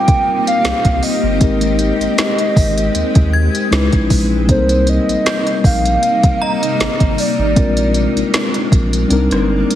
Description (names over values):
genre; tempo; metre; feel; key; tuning
contemporary R&B; 78 BPM; 4/4; swing 54% on 16ths; C minor; A4 = 441 Hz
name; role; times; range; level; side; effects
hollow clarinet-like synth lead; melody; 0.0-8.7 s; C5 to G5; -18 LUFS; right 1 dB; chorus, digital delay
mellow tine electric piano; accompaniment; 0.0-9.8 s; G3 to Cb5; -18 LUFS; left 3 dB; medium stereo tremolo
granular cloud pad; sustained chords; 0.0-9.8 s; C3 to G4; -22 LUFS; left 1 dB; built-in reverb, sidechain pumping
synth chime; texture; 0.0-7.9 s; Bb5 to Ab6; -27 LUFS; equal; ensemble chorus, phaser, tremolo, digital delay
smooth R&B drum kit; drums; 0.1-9.8 s; hi-hat, kick drum, rim click, snare drum; -16 LUFS; equal; none
round analog bass; bass; 0.6-9.6 s; G1 to Eb2; -18 LUFS; equal; none
room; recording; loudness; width
little or no reverb; heavily compressed radio sound, multiband compression; -12 LUFS; side -11 dB against mid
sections
0.0-9.8 A section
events
kick muted 9.1-9.8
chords
0.0 Eb6; 1.4 Abmaj9; 3.7 Dbm7; 4.5 Cm7; 7.6 Bb7; 9.1 Cm7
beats
0.64 | 1.41 2.18 2.95 3.72 | 4.49 5.26 6.03 6.80 | 7.57 8.34 9.10